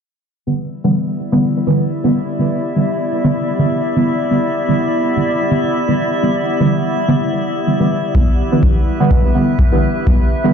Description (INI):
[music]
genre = dub techno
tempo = 125 BPM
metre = 4/4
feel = swing 55% on 16ths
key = E minor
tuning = A4 = 440 Hz
[part]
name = warbly tape-like pad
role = sustained chords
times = 1.2-10.5 s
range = B3 to E5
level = -20 LUFS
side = equal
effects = chorus, built-in reverb, sidechain pumping
[part]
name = deep mellow chord stab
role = stabs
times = 0.5-10.5 s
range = D3 to B3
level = -16 LUFS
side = right 1 dB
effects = chorus, phaser, sidechain pumping, dub echo
[part]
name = drifting glass-harmonics texture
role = texture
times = 1.3-10.5 s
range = E4 to E5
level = -24 LUFS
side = left 2 dB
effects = chorus, built-in reverb, sidechain pumping
[part]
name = electronic kick drum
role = drums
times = 8.1-10.2 s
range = none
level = -13 LUFS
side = equal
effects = none
[sound]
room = light reverb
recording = played on a big sound system in a bare room, stone room reverb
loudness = -13 LUFS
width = side -7 dB against mid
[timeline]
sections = 0.5-10.5 A section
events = filter sweep on synth stab 0.5-10.5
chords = 0.5 Em7